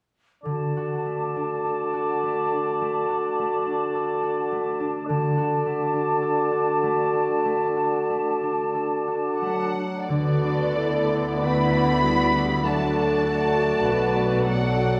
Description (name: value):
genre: classical, slow romantic movement for symphony orchestra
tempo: 42-53 BPM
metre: 4/4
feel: rubato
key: D major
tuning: A4 = 441 Hz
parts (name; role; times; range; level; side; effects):
- mellow clarinet; second line; 0.4-9.7 s; F#4; -32 LUFS; equal; none
- mellow oboe; second line; 0.4-9.7 s; D5; -34 LUFS; equal; none
- mellow small flute group; second line; 0.4-9.7 s; A5; -31 LUFS; equal; none
- dark bassoon; accompaniment; 0.4-9.7 s; D3; -29 LUFS; equal; none
- concert harp; arpeggios; 0.5-15.0 s; D3 to F#5; -34 LUFS; equal; none
- muted studio violin section; melody; 9.4-15.0 s; D5 to B5; -30 LUFS; equal; none
- warm French horn section; sustained chords; 9.4-15.0 s; D3 to B3; -28 LUFS; equal; none
- muted studio violin section; second line; 10.1-15.0 s; F#4 to D5; -31 LUFS; equal; none
- muted studio viola section; accompaniment; 10.1-15.0 s; F#3 to F#4; -30 LUFS; equal; none
- muted studio cello section; bass; 10.1-15.0 s; B2 to D3; -32 LUFS; equal; none
- muted studio double bass section; bass; 10.1-15.0 s; B1 to D2; -32 LUFS; equal; none
room: wet scoring stage reverb, RT60 1.9 s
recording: none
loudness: -24 LUFS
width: mono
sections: 0.4-10.1 A section; 10.1-15.0 B section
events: none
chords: 0.4 D